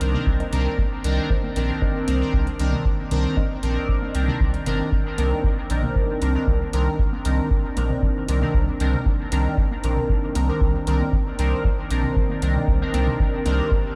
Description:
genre	dub techno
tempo	116 BPM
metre	4/4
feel	straight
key	C minor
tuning	A4 = 440 Hz
part	airy breathy pad	sustained chords	0.0-14.0 s	Eb3 to G4	-35 LUFS	equal	chorus, sidechain pumping
part	resonant sweep polysynth	stabs	0.0-13.7 s	Eb3 to Bb4	-28 LUFS	equal	chorus, phaser, sidechain pumping, dub echo
part	soft dub sub bass	bass	0.0-13.6 s	G1 to C2	-24 LUFS	equal	tube saturation, sidechain pumping
part	electronic hi-hat	drums	0.0-13.6 s	none	-39 LUFS	equal	none
part	electronic toms and congas	percussion	0.1-13.6 s	none	-34 LUFS	equal	sidechain pumping on toms, sidechain pumping on perc, dub echo
part	electronic kick drum	drums	0.3-13.8 s	none	-25 LUFS	equal	none
part	filtered dub chord stab	riff	0.4-3.5 s	D4 to Eb5	-41 LUFS	equal	none
room	little or no reverb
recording	played on a big sound system in a bare room, stone room reverb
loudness	-22 LUFS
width	mono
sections	0.0-4.9 A section; 4.9-14.0 A section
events	none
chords	0.0 Cm9

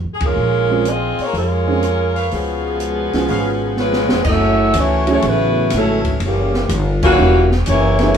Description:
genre	jazz, big band swing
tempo	123 BPM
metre	4/4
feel	swing 69% on 8ths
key	F# minor from 4.3 s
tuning	A4 = 441 Hz
part	upright bass	bass	0.0-8.2 s	E1 to G#2	-19 LUFS	equal	none
part	warm saxophone section	melody	0.1-8.1 s	E3 to E5	-17 LUFS	left 1 dB	none
part	open jazz drum kit	drums	0.2-8.2 s	crash cymbal, hi-hat, kick drum, ride cymbal, rim click, snare drum	-23 LUFS	equal	none
part	warm upright piano	accompaniment	0.7-8.2 s	F#3 to Ab4	-20 LUFS	right 5 dB	none
part	bright trumpet section	stabs	2.2-3.5 s	Ab4 to F5	-26 LUFS	left 1 dB	none
part	warm trombone section	second line	2.3-8.1 s	A#2 to E4	-21 LUFS	right 1 dB	none
room	moderate studio ambience, RT60 0.5 s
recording	band playing live in one room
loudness	-14 LUFS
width	side -8 dB against mid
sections	0.0-4.3 A section; 4.3-8.2 B section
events	band accent 0.1, 6.9; drum fill 3.8-4.3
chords	0.4 Bbm7; 2.3 Db7; 4.3 F#m7; 6.2 F#7b9

